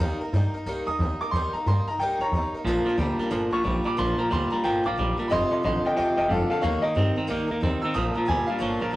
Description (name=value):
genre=rockabilly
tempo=181 BPM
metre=4/4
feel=swing 63% on 8ths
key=Bb major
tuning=A4 = 440 Hz
part: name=picked swing-style acoustic guitar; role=accompaniment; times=0.0-9.0 s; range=Bb2 to Bb4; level=-33 LUFS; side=equal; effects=none
part: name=upright bass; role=bass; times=0.0-8.9 s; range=F1 to G2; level=-28 LUFS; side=equal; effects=none
part: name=bright upright piano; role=melody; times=0.9-8.9 s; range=A4 to E6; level=-26 LUFS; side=equal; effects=none
part: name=twangy electric guitar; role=riff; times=2.6-9.0 s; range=F2 to C4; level=-26 LUFS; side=equal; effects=none
room=wet stone room reverb, RT60 1.1 s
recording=rough rehearsal-room recording, tube saturation, cassette tape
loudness=-22 LUFS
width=side -16 dB against mid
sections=0.0-9.0 A section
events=upright piano solo 0.0-9.0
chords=0.0 Eb; 2.7 Bb; 5.3 F; 6.6 Eb; 8.0 Bb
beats=| 0.01 0.34 0.67 1.00 | 1.33 1.67 2.00 2.33 | 2.66 2.99 3.32 3.65 | 3.98 4.31 4.64 4.98 | 5.31 5.64 5.97 6.30 | 6.63 6.96 7.29 7.62 | 7.95 8.28 8.61 8.95